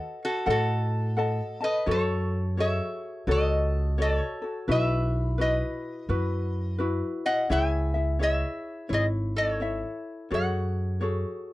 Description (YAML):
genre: Hawaiian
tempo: 85 BPM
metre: 4/4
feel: swing 62% on 8ths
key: unclear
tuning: A4 = 440 Hz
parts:
  - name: lap resonator guitar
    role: melody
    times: 0.0-11.0 s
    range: F#4 to G#5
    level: -29 LUFS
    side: equal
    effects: none
  - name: ukulele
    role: accompaniment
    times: 0.0-11.5 s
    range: E4 to A5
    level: -30 LUFS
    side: left 2 dB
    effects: none
  - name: upright bass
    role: bass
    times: 0.5-11.2 s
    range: G#1 to A2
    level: -27 LUFS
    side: equal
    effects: none
room: little or no reverb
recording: dry, close 1970s-style studio recording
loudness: -25 LUFS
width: side -17 dB against mid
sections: 0.0-11.5 A section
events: none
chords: 0.0 D#dim; 1.9 F#madd9; 4.7 Bsus4; 7.5 C#m; 10.3 F#madd9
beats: 0.47 1.17 | 1.87 2.58 3.28 3.98 | 4.68 5.39 6.09 6.79 | 7.50 8.20 8.90 9.60 | 10.31 11.01